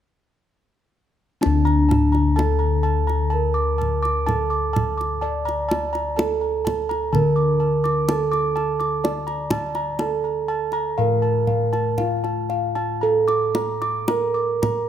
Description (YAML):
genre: Javanese gamelan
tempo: 62 BPM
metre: 4/4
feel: uneven beats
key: unclear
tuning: A4 = 440 Hz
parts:
  - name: gamelan-type bronze metallophone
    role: melody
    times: 1.4-14.9 s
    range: D4 to D5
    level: -23 LUFS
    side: right 5 dB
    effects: none
  - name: gamelan-type bossed gongs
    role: arpeggios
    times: 1.4-14.9 s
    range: F5 to D6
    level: -26 LUFS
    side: right 1 dB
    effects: none
  - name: gamelan-type bossed gongs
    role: bass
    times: 1.4-14.9 s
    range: D2 to D5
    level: -23 LUFS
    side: left 4 dB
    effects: none
  - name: kendang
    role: percussion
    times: 1.4-14.9 s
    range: none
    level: -27 LUFS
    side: right 1 dB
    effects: none
room: moderate recital hall reverb, RT60 1.6 s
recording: close, detailed microphones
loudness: -19 LUFS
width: side -10 dB against mid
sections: 1.4-14.9 A section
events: none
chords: none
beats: | 1.42 2.37 3.33 4.28 | 5.23 6.18 7.13 8.09 | 9.04 10.00 10.99 12.00 | 13.03 14.09